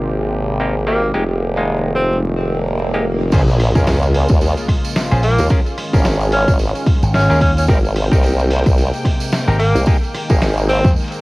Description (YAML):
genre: glitch hop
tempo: 110 BPM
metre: 4/4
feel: swing 58% on 16ths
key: Bb dorian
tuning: A4 = 440 Hz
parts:
  - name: warm analog pad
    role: sustained chords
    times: 0.0-11.2 s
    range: C3 to G5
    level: -24 LUFS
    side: equal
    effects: chorus, sidechain pumping, cassette tape
  - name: bright clav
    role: stabs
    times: 0.0-11.2 s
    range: Ab3 to C5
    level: -24 LUFS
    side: equal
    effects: sidechain pumping, low-pass filter, cassette tape, tape echo
  - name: formant-sweep wobble bass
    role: bass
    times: 0.0-10.8 s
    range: F1 to Eb2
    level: -17 LUFS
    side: equal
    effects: chorus, tube saturation
  - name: clear tenor saxophone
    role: melody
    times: 0.9-10.9 s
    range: Bb3 to Db4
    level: -20 LUFS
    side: equal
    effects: vintage 12-bit sampler grit, tape echo
  - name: swell and sub drop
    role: sound effects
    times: 2.5-5.5 s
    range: none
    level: -23 LUFS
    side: equal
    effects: none
  - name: boom bap sampler-style drum kit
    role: drums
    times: 3.3-11.2 s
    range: crash cymbal, hi-hat, rim click, snare drum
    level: -25 LUFS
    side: equal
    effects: cassette tape
  - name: electronic kick drum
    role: drums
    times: 3.3-10.9 s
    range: none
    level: -15 LUFS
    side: equal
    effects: overdrive, cassette tape
  - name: tambourine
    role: percussion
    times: 3.3-11.2 s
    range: none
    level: -33 LUFS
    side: right 7 dB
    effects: none
  - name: slap bass with an envelope filter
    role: bass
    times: 5.1-10.9 s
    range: Ab1 to F2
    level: -15 LUFS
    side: equal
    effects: none
room: light reverb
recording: home recording on cassette, vinyl crackle, low-pass filter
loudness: -13 LUFS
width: side -22 dB against mid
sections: 0.0-3.3 A section; 3.3-11.2 B section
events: swell 2.5-3.3; drop 3.3-11.2; impact 3.3-5.5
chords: 0.0 Abmaj9; 1.1 Fm11; 3.3 Bbm7; 5.5 Eb9sus4; 7.7 Abmaj9; 9.9 Fm11 (rootless)